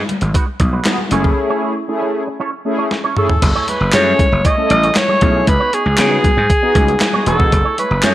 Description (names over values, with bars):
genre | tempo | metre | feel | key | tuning
early-eighties boogie funk | 117 BPM | 4/4 | straight | F# dorian | A4 = 440 Hz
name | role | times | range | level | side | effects
crisp 8-bit digital drum machine | drums | 0.1-8.1 s | crash cymbal, handclaps, hi-hat, kick drum, snare drum, toms | -16 LUFS | equal | gated reverb
congas | percussion | 0.1-8.1 s | none | -26 LUFS | left 2 dB | none
electric guitar with an envelope filter | riff | 0.2-8.1 s | G#3 to C#5 | -23 LUFS | right 5 dB | ensemble chorus
gritty slap bass | bass | 0.2-8.1 s | E1 to C#3 | -17 LUFS | equal | overdrive
mellow synth brass | accompaniment | 0.9-8.1 s | A3 to A4 | -20 LUFS | left 1 dB | chorus
breathy alto saxophone | melody | 3.2-8.1 s | G#4 to D#5 | -16 LUFS | equal | none
room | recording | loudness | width
light reverb, digital ambience | none | -12 LUFS | side -14 dB against mid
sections
0.0-3.4 A section; 3.4-8.1 B section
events
break 1.4-3.4; drum fill 2.9-3.4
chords
0.0 G#m7; 1.1 F#m7 (rootless); 3.4 F#m9; 5.5 C#9sus4; 7.5 F#m9